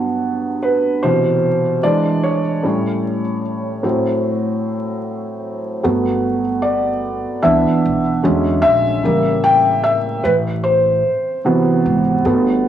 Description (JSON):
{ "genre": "lo-fi hip hop", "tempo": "75 BPM", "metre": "4/4", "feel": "swing 61% on 16ths", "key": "G major", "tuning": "A4 = 441 Hz", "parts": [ { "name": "felt-muted upright piano", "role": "accompaniment", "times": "0.0-12.7 s", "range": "G2 to G5", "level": "-15 LUFS", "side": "equal", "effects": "cassette tape, low-pass filter" }, { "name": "upright bass", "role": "bass", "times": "5.8-12.7 s", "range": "G1 to E2", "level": "-23 LUFS", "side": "right 1 dB", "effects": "none" } ], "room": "light reverb", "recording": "home recording on cassette, vinyl crackle, small room ambience", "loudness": "-14 LUFS", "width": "side -10 dB against mid", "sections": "0.0-5.8 A section; 5.8-12.7 B section", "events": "felt piano solo 0.0-5.8, 5.8-12.7; filter sweep on felt piano 0.0-5.8", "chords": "0.0 Gmaj7; 1.0 Cmaj7; 1.8 E6; 2.6 A7; 3.8 Am6; 5.8 Gmaj9; 7.4 Cmaj7; 8.2 E13; 9.0 A7b9; 10.2 Ab7alt", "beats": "0.24 1.04 1.84 | 2.64 3.44 4.24 5.04 | 5.84 6.64 7.44 8.24 | 9.04 9.84 10.64 11.44 | 12.24" }